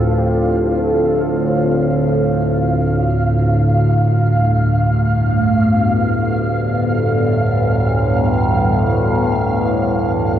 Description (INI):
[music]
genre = dark ambient drone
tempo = free time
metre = none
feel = none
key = unclear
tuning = A4 = 440 Hz
[part]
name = mellow horn-like synth lead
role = melody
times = 0.0-2.3 s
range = G4 to A4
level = -24 LUFS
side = right 1 dB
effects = phaser, analog chorus, tape echo
[part]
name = deep dark ambient pad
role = sustained chords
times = 0.0-10.4 s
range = G2 to A4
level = -19 LUFS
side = equal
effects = chorus, built-in reverb
[part]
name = overtone-sweeping drone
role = drone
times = 0.0-10.4 s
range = D2 to A2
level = -16 LUFS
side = equal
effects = chorus, built-in reverb, phaser
[part]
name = flickering grainy texture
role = texture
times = 0.0-10.4 s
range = F5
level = -23 LUFS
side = right 1 dB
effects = built-in reverb
[sound]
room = wet cathedral reverb, RT60 6.4 s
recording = worn, warbling old tape, cassette tape, warbly pitch drift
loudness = -14 LUFS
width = side -10 dB against mid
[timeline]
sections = 0.0-10.4 A section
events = none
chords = 0.0 Dm; 3.8 G7